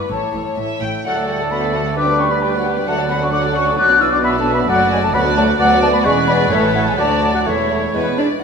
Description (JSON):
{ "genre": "quick classical-period movement for symphony orchestra", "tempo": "124-135 BPM", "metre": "2/4", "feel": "straight", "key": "D major, A major from 4.7 s", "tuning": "A4 = 440 Hz", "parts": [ { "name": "warm studio violin section", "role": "melody", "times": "0.0-8.4 s", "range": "B4 to G5", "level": "-26 LUFS", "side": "left 2 dB", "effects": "none" }, { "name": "warm chamber violin section", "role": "second line", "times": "0.0-8.4 s", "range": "D4 to D5", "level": "-25 LUFS", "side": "left 5 dB", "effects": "none" }, { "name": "dark studio viola section", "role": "accompaniment", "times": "0.0-8.2 s", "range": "F#3 to E4", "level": "-27 LUFS", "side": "right 1 dB", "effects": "none" }, { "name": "silver concert flute", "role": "second line", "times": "0.1-8.3 s", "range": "B4 to F#6", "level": "-18 LUFS", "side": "left 2 dB", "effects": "none" }, { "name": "dark chamber cello section", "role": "bass", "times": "0.1-8.4 s", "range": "D2 to D4", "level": "-23 LUFS", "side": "right 3 dB", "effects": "none" }, { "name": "warm chamber double bass section", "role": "bass", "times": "0.1-8.4 s", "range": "E1 to D2", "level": "-26 LUFS", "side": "right 4 dB", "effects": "none" }, { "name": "dark clarinet", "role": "second line", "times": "1.0-8.4 s", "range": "B3 to D5", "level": "-26 LUFS", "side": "right 2 dB", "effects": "none" }, { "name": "warm oboe", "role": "second line", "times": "1.1-8.4 s", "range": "A4 to F#5", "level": "-23 LUFS", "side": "right 3 dB", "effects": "none" }, { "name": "dark bassoon", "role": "accompaniment", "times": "1.1-8.4 s", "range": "F#3 to B3", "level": "-25 LUFS", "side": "right 3 dB", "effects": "none" }, { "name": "warm French horn section", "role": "sustained chords", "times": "1.1-8.2 s", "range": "E3 to F#4", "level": "-24 LUFS", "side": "left 4 dB", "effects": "none" } ], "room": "wet concert hall reverb, RT60 2.2 s", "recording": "minimal, uncompressed stereo recording", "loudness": "-14 LUFS", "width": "side -6 dB against mid", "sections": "0.0-1.0 A section; 1.0-8.4 B section", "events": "none", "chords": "0.1 A; 1.0 D; 2.0 G/D; 2.9 D; 3.8 Bm; 4.7 D/F#; 5.1 D; 6.1 E7; 6.5 A; 7.0 D; 7.5 A/E; 7.9 E", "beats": "| 0.10 0.58 | 1.05 1.51 | 1.97 2.43 | 2.88 3.33 | 3.78 4.24 | 4.69 5.14 | 5.60 6.05 | 6.52 6.99 | 7.47 7.95 | 8.43" }